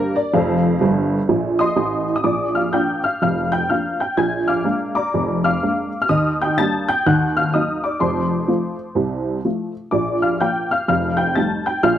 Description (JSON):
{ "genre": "jazz, stride piano", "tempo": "125 BPM", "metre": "4/4", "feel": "swing 64% on 8ths", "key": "Bb major", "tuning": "A4 = 436 Hz", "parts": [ { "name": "honky-tonk upright piano", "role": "solo", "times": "0.0-12.0 s", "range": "F1 to A6", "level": "-17 LUFS", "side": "equal", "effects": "none" } ], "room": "light reverb", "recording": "dry, close 1970s-style studio recording", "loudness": "-17 LUFS", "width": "side -10 dB against mid", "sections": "0.0-2.2 A section; 2.2-12.0 B section", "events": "honky-tonk piano fill 0.8-2.2", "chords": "0.3 F; 2.2 Bb; 4.2 Bb7; 6.1 Ebmaj7; 7.0 Ebm; 8.0 F; 9.9 Bb; 10.9 F9" }